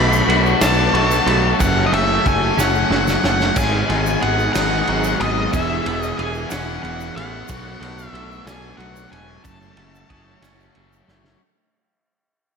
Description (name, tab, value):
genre	indie rock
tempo	61 BPM (dotted quarters)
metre	6/8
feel	straight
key	unclear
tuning	A4 = 442 Hz
part	octave-fuzz lead guitar	melody	0.0-11.0 s	D#5 to B5	-22 LUFS	left 1 dB	distortion, tape echo
part	string machine, cellos	sustained chords	0.0-11.4 s	A3 to D#6	-29 LUFS	equal	ensemble chorus
part	crunchy overdriven guitar	riff	0.0-11.4 s	E2 to A4	-23 LUFS	left 9 dB	none
part	twelve-string electric guitar	riff	0.0-11.4 s	E2 to A4	-25 LUFS	right 10 dB	lush chorus, tape echo
part	modern bright picked electric bass	bass	0.0-11.3 s	E1 to B1	-23 LUFS	equal	none
part	tube shaker	percussion	0.1-11.2 s	none	-34 LUFS	right 15 dB	none
part	loose indie drum kit	drums	0.3-11.4 s	crash cymbal, kick drum, ride cymbal, snare drum	-24 LUFS	equal	none
room	moderate lush hall reverb, RT60 1.7 s, studio reverb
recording	dreamy mix soaked in reverb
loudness	-15 LUFS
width	side -6 dB against mid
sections	0.0-11.4 A section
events	fade-out 0.0-11.4; drum fill 2.6-3.6, 11.1-11.4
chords	0.0 Bm7; 1.6 F#madd9; 3.6 G#m7; 5.5 E6; 7.5 Bm7; 9.5 F#madd9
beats	0.62 | 1.60 2.59 | 3.57 4.55 | 5.54 6.52 | 7.50 8.48 | 9.46 10.44